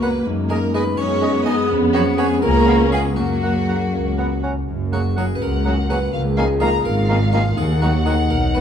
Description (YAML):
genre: cinematic, playful, whimsical film cue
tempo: 82 BPM (dotted quarters)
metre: 6/8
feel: straight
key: F# major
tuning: A4 = 440 Hz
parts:
  - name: harpsichord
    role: melody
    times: 0.0-8.6 s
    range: E#4 to D#5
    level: -30 LUFS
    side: right 2 dB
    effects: none
  - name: rich chamber violin section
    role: melody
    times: 0.0-8.6 s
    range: E#5 to B5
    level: -28 LUFS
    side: left 4 dB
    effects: none
  - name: bright silver concert flute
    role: second line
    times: 0.0-8.6 s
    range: F#5 to D#6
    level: -28 LUFS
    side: left 1 dB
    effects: none
  - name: clear oboe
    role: second line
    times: 0.0-8.6 s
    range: C#5 to F#5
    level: -31 LUFS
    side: right 1 dB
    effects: none
  - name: rich chamber violin section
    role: second line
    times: 0.0-8.6 s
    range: C#4 to D#5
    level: -30 LUFS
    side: right 1 dB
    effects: none
  - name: mellow bassoon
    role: accompaniment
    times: 0.0-8.6 s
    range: C#3 to C#4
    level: -29 LUFS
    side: right 3 dB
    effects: none
  - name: warm studio viola section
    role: accompaniment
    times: 0.0-8.6 s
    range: E#3 to C#4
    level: -25 LUFS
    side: equal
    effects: none
  - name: mellow French horn section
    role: sustained chords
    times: 0.0-8.6 s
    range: F#3 to F#4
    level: -26 LUFS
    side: left 3 dB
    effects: none
  - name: concert harp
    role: arpeggios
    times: 0.0-8.6 s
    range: E#2 to C#5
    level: -24 LUFS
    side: left 4 dB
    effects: none
  - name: rich chamber double bass section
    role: bass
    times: 0.0-8.6 s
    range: F#1 to F#2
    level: -22 LUFS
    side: right 1 dB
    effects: none
  - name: rich symphonic cello section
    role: bass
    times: 0.0-8.6 s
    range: C#2 to D#4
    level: -24 LUFS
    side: right 1 dB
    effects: none
room: wet stone room reverb, RT60 1.1 s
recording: dark, warm production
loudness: -16 LUFS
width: side -8 dB against mid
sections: 0.0-4.7 A section; 4.7-8.6 A section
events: none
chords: 0.3 G#m7/F#; 1.7 C#7/E#; 2.4 C#7; 3.2 F#; 6.1 C#13; 7.6 D#m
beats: | 0.26 0.98 | 1.70 2.43 | 3.18 3.93 | 4.68 5.42 | 6.14 6.86 | 7.58 8.31